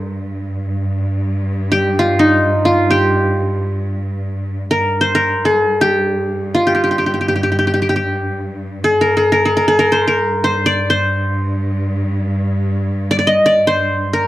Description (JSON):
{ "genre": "Arabic maqam ensemble", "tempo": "free time", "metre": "none", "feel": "none", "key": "G maqam bayati", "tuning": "A4 = 439 Hz", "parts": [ { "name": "qanun", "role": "melody", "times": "0.0-14.3 s", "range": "Eb4 to Eb5", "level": "-13 LUFS", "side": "equal", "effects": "none" }, { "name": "bright symphonic cello section", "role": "drone", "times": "0.0-14.3 s", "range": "G2", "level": "-20 LUFS", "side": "equal", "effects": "stereo widening" } ], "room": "light reverb", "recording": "dry, close 1970s-style studio recording", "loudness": "-14 LUFS", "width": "side -15 dB against mid", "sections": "0.0-14.3 A section", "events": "none", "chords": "none" }